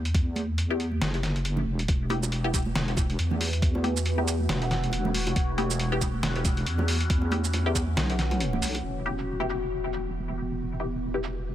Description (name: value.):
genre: deep dubstep.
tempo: 138 BPM.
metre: 4/4.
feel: swing 57% on 16ths, half-time.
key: unclear.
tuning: A4 = 441 Hz.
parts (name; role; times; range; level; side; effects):
deep soft wobble bass; bass; 0.0-11.5 s; E1 to E2; -28 LUFS; equal; chorus.
electronic kick drum; drums; 0.1-7.9 s; none; -26 LUFS; equal; overdrive.
trip hop sampler-style drum kit; drums; 0.1-11.3 s; hi-hat, shaker, snare drum; -31 LUFS; equal; overdrive, low-pass filter on hats, low-pass filter on snare, low-pass filter on perc.
congas and bongos; percussion; 0.4-8.8 s; none; -35 LUFS; right 3 dB; dub echo.
filtered dub chord stab; stabs; 0.7-11.2 s; B3 to G4; -34 LUFS; left 2 dB; phaser, wide subtle chorus, dub echo.
overtone-sweeping drone; sustained chords; 3.1-11.5 s; E3 to F#4; -34 LUFS; equal; chorus, built-in reverb.
room: little or no reverb.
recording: none.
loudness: -25 LUFS.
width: side -12 dB against mid.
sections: 0.0-8.8 A section; 8.8-11.5 B section.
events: none.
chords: 0.0 Em.